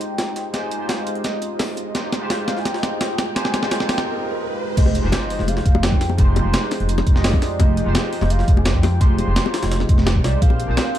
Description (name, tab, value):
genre	liquid drum and bass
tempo	170 BPM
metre	4/4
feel	straight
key	F minor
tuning	A4 = 440 Hz
part	warm velvety synth lead	melody	0.0-11.0 s	D5 to C6	-29 LUFS	equal	chorus, cassette tape, dub echo
part	barky tine electric piano	accompaniment	0.0-11.0 s	Ab3 to Eb5	-27 LUFS	equal	ensemble chorus, ping-pong delay
part	warm analog pad	sustained chords	0.0-11.0 s	F3 to D6	-31 LUFS	equal	lush chorus
part	breakbeat sampler-style drum kit	drums	0.0-11.0 s	crash cymbal, hi-hat, snare drum	-24 LUFS	right 1 dB	studio reverb
part	jungle sampler-style drum kit	drums	0.0-11.0 s	hi-hat, snare drum	-30 LUFS	equal	overdrive, high-pass filter on hats, studio reverb, high-pass filter on snare
part	riser and sub drop	sound effects	1.4-6.2 s	none	-30 LUFS	right 1 dB	none
part	upright bass	bass	4.8-10.8 s	F1 to F2	-20 LUFS	equal	none
part	electronic kick drum	drums	4.8-10.5 s	none	-16 LUFS	equal	studio reverb
part	bongos	percussion	4.9-10.8 s	none	-28 LUFS	left 7 dB	none
room	light reverb, digital ambience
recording	dark, warm production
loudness	-17 LUFS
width	side -12 dB against mid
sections	0.0-4.8 A section; 4.8-11.0 B section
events	build-up 0.0-4.8; drum fill 0.0-4.1; riser 1.4-4.8; break 4.1-4.8; drop 4.8-11.0; impact 4.8-6.2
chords	0.0 Fm9; 10.4 Bb13